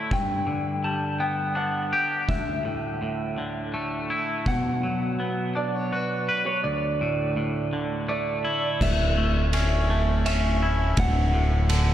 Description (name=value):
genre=post-rock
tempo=83 BPM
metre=3/4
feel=straight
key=D major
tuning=A4 = 440 Hz
part: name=twangy electric guitar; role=arpeggios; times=0.0-11.9 s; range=D2 to B4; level=-26 LUFS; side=left 1 dB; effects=lush chorus, diffuse ambient delay
part: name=electric guitar through a small old amp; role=melody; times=0.1-11.9 s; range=B4 to A5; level=-30 LUFS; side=right 1 dB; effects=diffuse ambient delay
part: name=oversized low-tuned drum kit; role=drums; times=0.1-4.6, 8.8-11.9 s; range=crash cymbal, kick drum, ride cymbal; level=-29 LUFS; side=equal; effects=none
part: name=growling fingered electric bass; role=bass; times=8.8-11.9 s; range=D1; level=-22 LUFS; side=equal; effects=overdrive
room=wet cathedral reverb, RT60 5.4 s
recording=dreamy mix soaked in reverb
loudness=-23 LUFS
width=side -11 dB against mid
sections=0.0-8.8 A section; 8.8-11.9 B section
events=none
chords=0.1 G; 2.3 Dsus2; 4.5 Bm; 6.6 Dsus2; 8.8 A/D; 11.0 D